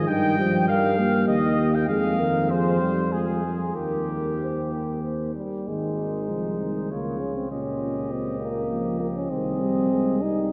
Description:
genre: classical, brass quintet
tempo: 92-102 BPM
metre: 3/4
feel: rubato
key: Ab major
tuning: A4 = 439 Hz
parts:
  - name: warm trumpet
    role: melody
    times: 0.0-10.5 s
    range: G4 to G5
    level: -35 LUFS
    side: equal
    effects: none
  - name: warm flugelhorn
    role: second line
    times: 0.0-10.5 s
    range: Eb4 to G5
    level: -35 LUFS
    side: equal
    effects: none
  - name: dark euphonium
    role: accompaniment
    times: 0.0-10.5 s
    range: Bb2 to Bb3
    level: -30 LUFS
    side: equal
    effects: none
  - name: warm French horn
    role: accompaniment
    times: 0.0-10.5 s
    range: G3 to C5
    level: -30 LUFS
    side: equal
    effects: none
  - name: warm tuba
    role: bass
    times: 0.0-10.5 s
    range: Ab1 to G2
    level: -31 LUFS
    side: equal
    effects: none
room: wet cathedral reverb, RT60 5.1 s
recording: none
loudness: -25 LUFS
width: mono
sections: 0.0-5.7 A section; 5.7-10.5 B section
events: none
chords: 0.1 Eb/G; 1.9 Fm; 3.8 Eb; 5.7 Ab; 6.9 Bbm/Db; 7.5 Eb7/Db; 9.3 Ab/C

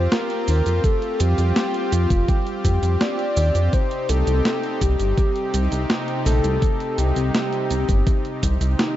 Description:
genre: synthwave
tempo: 83 BPM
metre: 4/4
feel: straight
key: C dorian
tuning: A4 = 440 Hz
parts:
  - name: soft octave-layered synth lead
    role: melody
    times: 0.0-9.0 s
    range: Eb4 to D5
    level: -25 LUFS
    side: left 1 dB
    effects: chorus, vintage 12-bit sampler grit, tape echo
  - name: soft supersaw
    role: sustained chords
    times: 0.0-9.0 s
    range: C3 to G4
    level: -27 LUFS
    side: equal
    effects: sidechain pumping
  - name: chorused synth bass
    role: bass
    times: 0.0-8.8 s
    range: F1 to F2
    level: -19 LUFS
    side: equal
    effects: none
  - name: clean 12-bit digital drum machine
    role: drums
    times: 0.1-8.9 s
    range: hi-hat, shaker, snare drum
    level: -25 LUFS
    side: right 1 dB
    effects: overdrive
  - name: electronic kick drum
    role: drums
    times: 0.8-8.6 s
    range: none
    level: -20 LUFS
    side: equal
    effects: overdrive
room: light reverb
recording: dark, warm production, nothing above 7.7 kHz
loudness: -18 LUFS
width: side -13 dB against mid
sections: 0.0-9.0 A section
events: none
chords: 0.0 Fsus2; 3.7 Cm

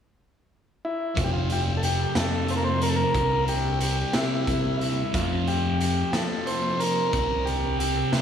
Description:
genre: psychedelic rock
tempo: 60 BPM (dotted quarters)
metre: 6/8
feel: straight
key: unclear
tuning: A4 = 443 Hz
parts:
  - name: combo organ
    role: melody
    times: 0.8-8.2 s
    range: E4 to C5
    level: -27 LUFS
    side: equal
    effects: analog delay
  - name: thick fuzz guitar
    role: riff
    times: 1.1-8.2 s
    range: F2 to C4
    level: -29 LUFS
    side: left 1 dB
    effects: distortion, phaser
  - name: picked electric bass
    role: bass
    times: 1.2-8.2 s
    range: F1 to F3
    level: -27 LUFS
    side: equal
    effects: none
  - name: raw garage drum kit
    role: drums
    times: 1.2-8.2 s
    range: hi-hat, kick drum, snare drum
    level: -30 LUFS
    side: equal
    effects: none
room: moderate lush hall reverb, RT60 2.2 s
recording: dreamy mix soaked in reverb, small room ambience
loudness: -22 LUFS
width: side -8 dB against mid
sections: 0.0-1.2 A section; 1.2-8.2 B section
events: none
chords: 0.0 N.C.; 1.2 F5; 3.2 C; 5.1 F5; 7.1 C5

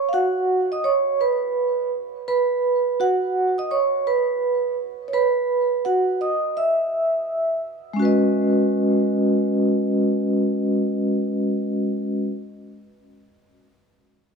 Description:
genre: hip hop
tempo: 84 BPM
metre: 4/4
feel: swing 63% on 16ths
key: unclear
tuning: A4 = 440 Hz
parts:
  - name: vibraphone with medium mallets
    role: solo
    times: 0.0-12.3 s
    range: G#3 to E6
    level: -19 LUFS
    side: right 1 dB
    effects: tape echo
room: light reverb, studio reverb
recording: small room ambience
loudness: -19 LUFS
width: side -5 dB against mid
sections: 0.0-8.0 A section; 8.0-10.8 B section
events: vibraphone solo 0.0-8.0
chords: 0.0 F#5; 0.8 Bsus2; 2.3 Esus2; 8.0 B69/G#

